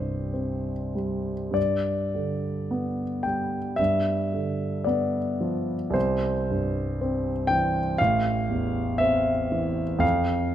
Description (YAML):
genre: classical, romantic nocturne for solo piano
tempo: 48-61 BPM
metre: 4/4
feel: rubato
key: C major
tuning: A4 = 440 Hz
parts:
  - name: warm grand piano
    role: solo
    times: 0.0-10.5 s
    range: A1 to G5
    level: -23 LUFS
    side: equal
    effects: none
room: light reverb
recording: close, detailed microphones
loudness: -23 LUFS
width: side -11 dB against mid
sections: 0.0-10.5 A section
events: none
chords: 0.0 C5; 1.6 G; 3.8 G7; 6.0 C; 8.0 Am; 10.0 N.C.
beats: 0.35 | 1.57 2.71 3.79 4.86 | 5.95 7.00 7.99 9.00 | 10.03